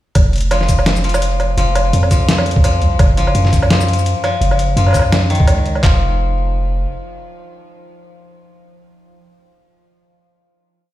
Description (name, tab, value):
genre	half-time drum and bass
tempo	169 BPM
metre	4/4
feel	swing 56% on 16ths, half-time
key	unclear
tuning	A4 = 440 Hz
part	long sustained 808-style bass	bass	0.2-6.9 s	F1 to Gb2	-15 LUFS	equal	none
part	boom bap sampler-style drum kit	drums	0.2-5.9 s	handclaps, kick drum	-13 LUFS	equal	none
part	boom bap sampler-style drum kit	drums	0.2-5.8 s	hi-hat, shaker, snare drum, woodblock	-19 LUFS	equal	none
part	koto	arpeggios	0.5-9.1 s	Eb3 to F3	-21 LUFS	left 3 dB	ping-pong delay
room	little or no reverb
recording	played on a big sound system in a bare room, stone room reverb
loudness	-12 LUFS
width	side -14 dB against mid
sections	0.2-5.8 drop; 5.8-8.7 final note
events	drop 0.2-5.8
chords	0.2 F5; 3.0 Gb5; 5.8 N.C.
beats	| 0.16 0.51 0.87 1.22 | 1.58 1.93 2.29 2.64 | 3.00 3.35 3.71 4.06 | 4.42 4.77 5.13 5.48 | 5.84 6.19 6.55 6.90 | 7.26 7.61 7.97 8.32